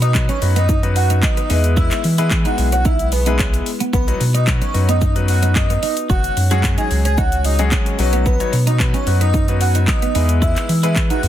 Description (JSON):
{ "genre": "dance-pop", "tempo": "111 BPM", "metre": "4/4", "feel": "straight", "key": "B major", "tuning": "A4 = 439 Hz", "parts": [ { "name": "airy dreamy lead", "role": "melody", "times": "0.0-11.2 s", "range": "B4 to G#5", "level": "-23 LUFS", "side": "right 1 dB", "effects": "chorus, sidechain pumping" }, { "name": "warm concert grand piano", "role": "accompaniment", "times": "0.0-11.3 s", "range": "F#3 to C#5", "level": "-25 LUFS", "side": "left 5 dB", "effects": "sidechain pumping" }, { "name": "glass harmonica", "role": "sustained chords", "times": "0.0-11.3 s", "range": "G#3 to C#5", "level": "-30 LUFS", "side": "left 1 dB", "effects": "sidechain pumping" }, { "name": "twelve-string electric guitar", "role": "riff", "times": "0.0-11.3 s", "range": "B3 to F#4", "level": "-26 LUFS", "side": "right 8 dB", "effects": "wide subtle chorus" }, { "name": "warm sub bass", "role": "bass", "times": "0.0-11.3 s", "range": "F#1 to E3", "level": "-17 LUFS", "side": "equal", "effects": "sidechain pumping" }, { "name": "pop drum kit", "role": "drums", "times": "0.0-11.3 s", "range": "handclaps, hi-hat, kick drum, shaker", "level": "-19 LUFS", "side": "equal", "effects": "none" } ], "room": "little or no reverb", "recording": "dense, heavily limited modern master", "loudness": "-14 LUFS", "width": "side -12 dB against mid", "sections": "0.0-11.3 A section", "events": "none", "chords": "0.0 B; 1.5 E; 3.9 B; 6.1 F#sus2; 8.0 B; 10.1 E" }